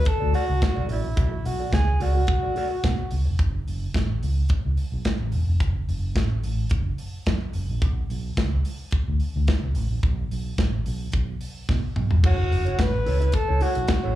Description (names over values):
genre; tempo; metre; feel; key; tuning
disco; 108 BPM; 4/4; straight; F# minor; A4 = 437 Hz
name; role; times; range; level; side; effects
warm alto saxophone; melody; 0.0-3.1, 12.3-14.2 s; E4 to B4; -27 LUFS; left 1 dB; slapback echo
mellow electric guitar; accompaniment; 0.0-3.3, 12.2-14.2 s; E4 to E5; -32 LUFS; right 2 dB; slapback echo
modern studio drum kit; drums; 0.1-14.0 s; crash cymbal, hi-hat, kick drum, snare drum, toms; -24 LUFS; equal; none
fingered electric bass; bass; 0.2-14.1 s; E1 to B2; -24 LUFS; equal; none
room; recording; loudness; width
little or no reverb; live gig heard through the venue's PA, club reverb; -22 LUFS; side -14 dB against mid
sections
0.0-3.4 A section; 3.4-12.2 B section; 12.2-14.2 C section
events
drum fill 11.7-12.2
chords
0.0 Bm7; 3.4 F#m; 7.8 N.C.; 12.2 F#m7